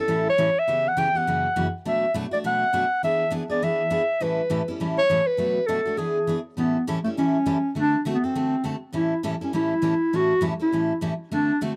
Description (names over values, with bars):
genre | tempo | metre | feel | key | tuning
jazz | 203 BPM | 4/4 | swing 60% on 8ths | A mixolydian | A4 = 440 Hz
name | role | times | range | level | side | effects
warm clarinet | melody | 0.0-11.6 s | A3 to G5 | -24 LUFS | equal | none
picked steel-string acoustic guitar | accompaniment | 0.0-11.7 s | F#2 to A4 | -29 LUFS | equal | none
room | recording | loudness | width
small room ambience | dry, close 1970s-style studio recording | -24 LUFS | mono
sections
0.0-6.6 A section; 6.6-11.8 A section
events
none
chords
0.0 A7; 0.7 C#m7b5; 1.3 F#7; 1.8 Bm7; 3.0 E7; 4.2 A7; 5.4 Bm7; 6.0 E7; 6.6 A7; 7.7 D7; 8.9 A7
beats
0.08 0.37 | 0.67 0.96 1.26 1.55 | 1.85 2.14 2.44 2.73 | 3.03 3.32 3.62 3.91 | 4.21 4.50 4.79 5.09 | 5.38 5.68 5.97 6.27 | 6.57 6.86 7.16 7.45 | 7.75 8.04 8.34 8.64 | 8.93 9.23 9.53 9.82 | 10.12 10.41 10.71 11.01 | 11.30 11.60